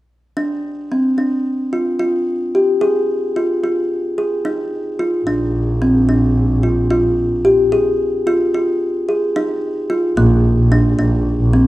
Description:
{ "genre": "contemporary instrumental, chamber music in an uneven meter", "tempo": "220 BPM (eighths)", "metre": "9/8", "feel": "straight", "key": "Bb major", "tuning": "A4 = 440 Hz", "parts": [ { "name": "kalimba", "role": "arpeggios", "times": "0.4-11.7 s", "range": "Bb3 to Ab4", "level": "-15 LUFS", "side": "equal", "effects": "none" }, { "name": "warm double bass", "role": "bass", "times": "5.3-11.7 s", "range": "Bb1", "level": "-16 LUFS", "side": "equal", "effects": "none" } ], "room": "moderate recital hall reverb, RT60 1.3 s", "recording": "dark, warm production, faint mains hum", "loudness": "-14 LUFS", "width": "side -16 dB against mid", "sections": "0.4-10.2 A section; 10.2-11.7 B section", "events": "break 7.7-10.2", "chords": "0.4 Csus4 (rootless); 2.8 Ebsus24; 5.3 Bb; 7.7 Ebsus24; 10.2 Bb" }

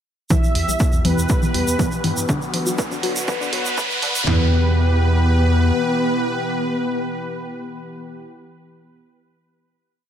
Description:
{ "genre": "melodic techno", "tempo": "121 BPM", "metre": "4/4", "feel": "straight", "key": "E minor", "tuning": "A4 = 439 Hz", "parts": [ { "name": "wide unison lead", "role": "melody", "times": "0.3-8.3 s", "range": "B3 to E4", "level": "-26 LUFS", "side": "left 1 dB", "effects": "sidechain pumping, tape echo" }, { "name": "soft supersaw", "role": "second line", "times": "0.3-8.3 s", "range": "B4 to E5", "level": "-26 LUFS", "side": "equal", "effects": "sidechain pumping, low-pass filter, tape echo" }, { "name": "warm analog pad", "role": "sustained chords", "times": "0.3-8.3 s", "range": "D3 to G4", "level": "-28 LUFS", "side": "left 1 dB", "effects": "wide subtle chorus, sidechain pumping" }, { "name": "tight sequenced synth", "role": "arpeggios", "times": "0.3-4.5 s", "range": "D3 to B3", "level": "-26 LUFS", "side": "equal", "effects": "chorus, phaser, sidechain pumping, dub echo" }, { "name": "electronic congas and hi-hat", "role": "drums", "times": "0.3-4.1 s", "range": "none", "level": "-26 LUFS", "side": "left 1 dB", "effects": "sidechain pumping on perc, sidechain pumping on hats, tape echo" }, { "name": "punchy analog drum machine", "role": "drums", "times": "0.3-4.4 s", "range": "kick drum, snare drum, toms", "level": "-20 LUFS", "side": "equal", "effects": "none" }, { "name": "egg shaker", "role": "percussion", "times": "0.3-4.2 s", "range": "none", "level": "-28 LUFS", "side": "right 2 dB", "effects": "none" }, { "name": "riser", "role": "sound effects", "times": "1.6-4.3 s", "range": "none", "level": "-26 LUFS", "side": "right 1 dB", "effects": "none" }, { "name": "round analog bass", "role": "bass", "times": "0.6-5.7 s", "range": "F#1 to G2", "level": "-18 LUFS", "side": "equal", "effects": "sidechain pumping" } ], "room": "light reverb", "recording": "echo-heavy mix, high-pass filter", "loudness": "-17 LUFS", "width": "side -9 dB against mid", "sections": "0.3-4.3 build; 4.3-8.2 final chord", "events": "build-up 0.3-4.3; filter sweep on synth arpeggio sound 0.3-4.3; filter sweep on analog synth lead 0.3-4.3; filter sweep on supersaw synth 0.3-4.3; filter sweep on analog synth pad 0.3-4.3; filter sweep 0.3-4.3; riser 1.6-4.3", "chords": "0.3 Em; 2.3 Bm; 4.3 Em" }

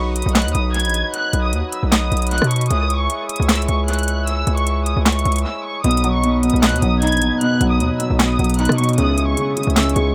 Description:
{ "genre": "hip hop, trap", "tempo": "153 BPM", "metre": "4/4", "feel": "half-time", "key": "B major", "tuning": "A4 = 439 Hz", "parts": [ { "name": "warm studio violin section", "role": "melody", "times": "0.0-10.1 s", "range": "C#6 to G#6", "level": "-26 LUFS", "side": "equal", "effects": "low-pass filter, dub echo" }, { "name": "mellow accordion", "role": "sustained chords", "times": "0.0-10.1 s", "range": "F#3 to C#5", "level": "-30 LUFS", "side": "equal", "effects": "none" }, { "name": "distorted 808-style bass", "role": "bass", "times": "0.0-10.1 s", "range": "A#1 to B2", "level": "-21 LUFS", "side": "equal", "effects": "distortion" }, { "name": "trap drum kit", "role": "drums", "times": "0.2-10.1 s", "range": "handclaps, hi-hat, rim click, snare drum", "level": "-24 LUFS", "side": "equal", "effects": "dub echo" }, { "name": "felt-muted upright piano", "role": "accompaniment", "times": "5.8-10.1 s", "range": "B2 to D#4", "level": "-21 LUFS", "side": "equal", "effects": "low-pass filter, dub echo" } ], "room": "little or no reverb", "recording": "echo-heavy mix", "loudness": "-18 LUFS", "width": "mono", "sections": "0.0-10.1 A section", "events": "break 5.5-5.8", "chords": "0.0 B; 2.7 C#m; 5.8 B; 9.0 C#m" }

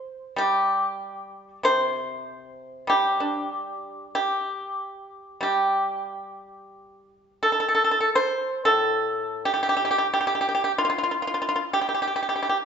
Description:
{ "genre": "chinese traditional, Chinese solo plucked strings", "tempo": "81-98 BPM", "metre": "4/4", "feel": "rubato", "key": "G shang mode", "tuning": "A4 = 441 Hz", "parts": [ { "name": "pipa", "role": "solo", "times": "0.0-12.6 s", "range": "A2 to C5", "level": "-22 LUFS", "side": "equal", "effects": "none" } ], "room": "moderate scoring stage reverb, RT60 1.5 s", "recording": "recorded in a church or concert hall, nothing above 7.8 kHz", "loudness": "-22 LUFS", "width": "side -7 dB against mid", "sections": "0.0-8.2 A section; 8.2-12.7 B section", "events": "none", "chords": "none" }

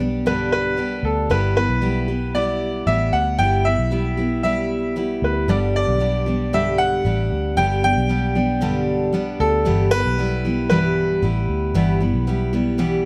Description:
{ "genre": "acoustic pop", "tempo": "115 BPM", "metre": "4/4", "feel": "straight", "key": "unclear", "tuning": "A4 = 439 Hz", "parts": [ { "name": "picked steel-string acoustic guitar", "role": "accompaniment", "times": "0.0-13.1 s", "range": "G2 to G4", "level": "-24 LUFS", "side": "equal", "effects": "none" }, { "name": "vintage muted fingered electric bass", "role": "bass", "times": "0.0-13.1 s", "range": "G1 to D2", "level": "-25 LUFS", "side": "equal", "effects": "none" }, { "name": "bright upright piano", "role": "melody", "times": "0.3-13.1 s", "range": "A4 to G5", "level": "-25 LUFS", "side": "equal", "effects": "slapback echo" } ], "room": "light reverb", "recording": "none", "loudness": "-20 LUFS", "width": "mono", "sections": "0.0-13.1 A section", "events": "none", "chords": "0.0 G; 1.3 Em/G; 5.5 G; 9.7 Em/G" }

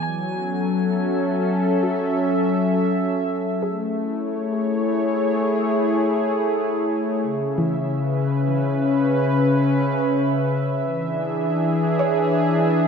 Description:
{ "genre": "ambient", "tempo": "50 BPM", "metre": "3/4", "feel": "straight", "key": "F# minor", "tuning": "A4 = 440 Hz", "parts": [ { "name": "warm analog pad", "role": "sustained chords", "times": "0.0-12.9 s", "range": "C#3 to E5", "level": "-19 LUFS", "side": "left 1 dB", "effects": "chorus" }, { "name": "soft round pluck", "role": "arpeggios", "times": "0.0-12.9 s", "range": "E3 to G#5", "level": "-30 LUFS", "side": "equal", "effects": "lush chorus, analog delay" } ], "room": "wet lush hall reverb, RT60 2.8 s", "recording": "dreamy mix soaked in reverb", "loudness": "-19 LUFS", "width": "side -6 dB against mid", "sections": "0.0-12.9 A section", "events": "none", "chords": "0.0 F#m7; 3.6 Amaj7; 7.2 C#m7; 10.8 E7" }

